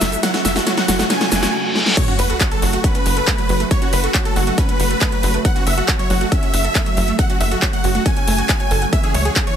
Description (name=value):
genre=uplifting trance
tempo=138 BPM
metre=4/4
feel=straight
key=F# minor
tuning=A4 = 440 Hz
part: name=big supersaw lead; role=melody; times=0.0-9.5 s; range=F#4 to G#5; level=-21 LUFS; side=equal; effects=sidechain pumping, tape echo
part: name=wide unison pluck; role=arpeggios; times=0.0-9.5 s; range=E3 to F#5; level=-25 LUFS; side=right 4 dB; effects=sidechain pumping, tape echo
part: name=tight sequencer bass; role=bass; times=0.0-9.3 s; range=F#1 to C#2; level=-21 LUFS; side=equal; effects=sidechain pumping
part: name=big-room dance drum kit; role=drums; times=0.0-9.6 s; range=crash cymbal, handclaps, hi-hat, snare drum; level=-21 LUFS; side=equal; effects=none
part: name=tube shaker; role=percussion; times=0.0-1.5 s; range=none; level=-27 LUFS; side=left 3 dB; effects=none
part: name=riser, reverse cymbal and sub drop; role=sound effects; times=0.0-3.7 s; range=none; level=-24 LUFS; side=equal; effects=none
part: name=electronic kick drum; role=drums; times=2.0-9.4 s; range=none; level=-18 LUFS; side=equal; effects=none
room=light reverb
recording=none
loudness=-15 LUFS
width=side -9 dB against mid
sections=0.0-2.0 A section; 2.0-9.6 B section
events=build-up 0.0-2.0; drum fill 0.0-1.5, 1.8; reverse cymbal 1.1-2.0; drop 2.0-9.6; impact 2.0-3.7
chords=0.0 F#m; 8.9 C#m